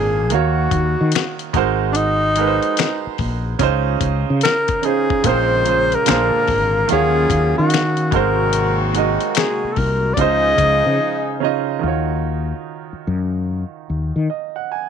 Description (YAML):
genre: R&B, neo-soul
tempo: 73 BPM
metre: 4/4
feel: swing 64% on 16ths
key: Eb dorian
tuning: A4 = 438 Hz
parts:
  - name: breathy tenor saxophone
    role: melody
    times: 0.0-11.4 s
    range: D4 to Eb5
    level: -18 LUFS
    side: left 2 dB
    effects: none
  - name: clear concert grand piano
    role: accompaniment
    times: 0.0-14.9 s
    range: Bb2 to Ab5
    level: -21 LUFS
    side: right 13 dB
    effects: none
  - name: mellow fretless electric bass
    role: bass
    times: 0.0-14.3 s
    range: Ab1 to Eb3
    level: -20 LUFS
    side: left 2 dB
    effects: wide subtle chorus
  - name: dusty soul sampler-style drum kit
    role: drums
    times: 0.3-10.8 s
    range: finger snaps, hi-hat, kick drum, snare drum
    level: -22 LUFS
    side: left 7 dB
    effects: none
  - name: hollow soft pad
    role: sustained chords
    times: 5.2-11.8 s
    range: C3 to F5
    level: -28 LUFS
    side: equal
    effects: chorus
  - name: warm horn section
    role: stabs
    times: 5.2-11.4 s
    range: Db3 to Ab4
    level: -26 LUFS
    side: left 4 dB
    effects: none
room: small room ambience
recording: 1960s-style stereo with parts hard left and right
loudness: -15 LUFS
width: side -7 dB against mid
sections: 0.0-11.8 A section; 11.8-14.9 B section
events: break 11.0-11.8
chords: 0.3 Ebm9; 1.5 Ab9; 3.6 Dbmaj9; 5.2 Bbm9; 6.1 Bb7; 6.9 Ebm9; 8.1 Ab9; 10.2 Dbmaj9; 11.8 Ebm7